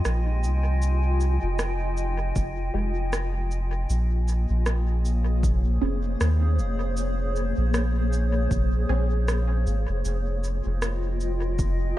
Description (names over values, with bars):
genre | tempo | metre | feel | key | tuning
ambient dub | 78 BPM | 4/4 | swing 57% on 16ths | F minor | A4 = 440 Hz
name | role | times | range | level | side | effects
granular cloud pad | sustained chords | 0.0-12.0 s | Bb3 to Ab5 | -31 LUFS | left 2 dB | built-in reverb
soft dub sub bass | bass | 0.1-11.9 s | F1 to Eb2 | -24 LUFS | equal | none
electronic rim click and cabasa | drums | 0.1-11.8 s | none | -34 LUFS | right 1 dB | dub echo
electronic kick drum | drums | 2.4-11.8 s | none | -27 LUFS | equal | none
filtered dub chord stab | stabs | 2.7-12.0 s | Ab3 to Ab4 | -33 LUFS | right 3 dB | phaser, analog chorus, dub echo
room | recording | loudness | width
little or no reverb | none | -22 LUFS | side -14 dB against mid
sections
0.0-12.0 A section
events
none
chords
0.0 Fm9; 3.9 Bbm9; 10.0 Fm9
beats
0.05 | 0.82 1.59 2.36 3.13 | 3.90 4.66 5.43 6.20 | 6.97 7.74 8.51 9.28 | 10.05 10.82 11.59